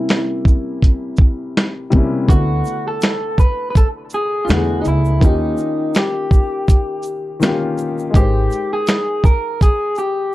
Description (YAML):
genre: lo-fi hip hop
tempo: 82 BPM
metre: 4/4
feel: swing 57% on 16ths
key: unclear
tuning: A4 = 441 Hz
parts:
  - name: electric guitar through a small old amp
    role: melody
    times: 0.0-10.3 s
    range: Eb4 to B4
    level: -21 LUFS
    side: equal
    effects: low-pass filter, analog delay
  - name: dark upright piano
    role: accompaniment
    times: 0.0-10.3 s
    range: C3 to G5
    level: -22 LUFS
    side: left 3 dB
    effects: cassette tape, low-pass filter
  - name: dusty soul sampler-style drum kit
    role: drums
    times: 0.1-10.2 s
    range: finger snaps, hi-hat, kick drum, shaker, snare drum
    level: -13 LUFS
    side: equal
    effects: none
  - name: upright bass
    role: bass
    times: 2.3-8.5 s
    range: Ab1 to E2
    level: -18 LUFS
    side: equal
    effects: none
  - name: tube shaker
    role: percussion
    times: 2.3-10.2 s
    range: none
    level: -42 LUFS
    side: right 7 dB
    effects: none
room: moderate small room reverb, RT60 0.5 s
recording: dark, warm production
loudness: -14 LUFS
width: side -16 dB against mid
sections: 0.0-2.3 A section; 2.3-10.3 B section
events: none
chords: 0.0 C7b9; 2.3 D69; 5.2 Eb7; 8.1 Abmaj9